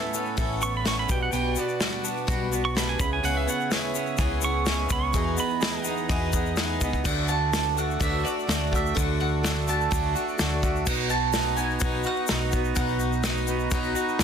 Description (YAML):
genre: folk rock and heartland rock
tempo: 126 BPM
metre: 4/4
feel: straight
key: unclear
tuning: A4 = 441 Hz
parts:
  - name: pedal steel guitar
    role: second line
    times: 0.0-5.9 s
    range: D5 to C#6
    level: -29 LUFS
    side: right 5 dB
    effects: none
  - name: bright reed electric piano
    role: accompaniment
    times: 0.0-14.2 s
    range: G3 to B5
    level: -38 LUFS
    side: left 9 dB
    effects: overdrive, fast tremolo
  - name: picked swing-style acoustic guitar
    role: accompaniment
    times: 0.0-14.2 s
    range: E2 to A4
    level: -32 LUFS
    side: left 8 dB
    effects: none
  - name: accordion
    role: sustained chords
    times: 0.0-14.2 s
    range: D4 to F#5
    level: -36 LUFS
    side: right 2 dB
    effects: none
  - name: electric guitar at the edge of break-up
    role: riff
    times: 0.0-14.2 s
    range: E2 to A4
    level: -31 LUFS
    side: right 11 dB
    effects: none
  - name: soft brush drum kit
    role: drums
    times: 0.1-14.2 s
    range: crash cymbal, hi-hat, kick drum, snare drum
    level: -29 LUFS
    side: equal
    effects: none
  - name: egg shaker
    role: percussion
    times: 0.1-14.2 s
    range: none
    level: -36 LUFS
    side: left 14 dB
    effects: none
  - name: hollow-body short-scale fingered electric bass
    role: bass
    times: 0.4-14.2 s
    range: A1 to E2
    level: -29 LUFS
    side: equal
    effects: none
  - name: bowl-back mandolin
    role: melody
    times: 7.1-14.1 s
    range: D5 to A5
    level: -30 LUFS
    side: right 5 dB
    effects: none
room: light reverb, small room ambience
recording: dense, heavily limited modern master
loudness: -23 LUFS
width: side -7 dB against mid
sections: 0.0-7.0 A section; 7.0-14.2 B section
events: pedal steel guitar solo 0.0-7.0; reed electric piano fill 6.1-7.0, 13.7-14.2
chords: 0.0 Aadd9; 1.1 Gmaj7/B; 3.0 C#m7; 7.0 D; 10.9 B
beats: 0.38 0.86 | 1.33 1.81 2.29 2.76 | 3.24 3.71 4.19 4.67 | 5.14 5.62 6.10 6.57 | 7.05 7.53 8.00 8.48 | 8.96 9.43 9.91 10.39 | 10.86 11.34 11.81 12.29 | 12.77 13.24 13.72 14.19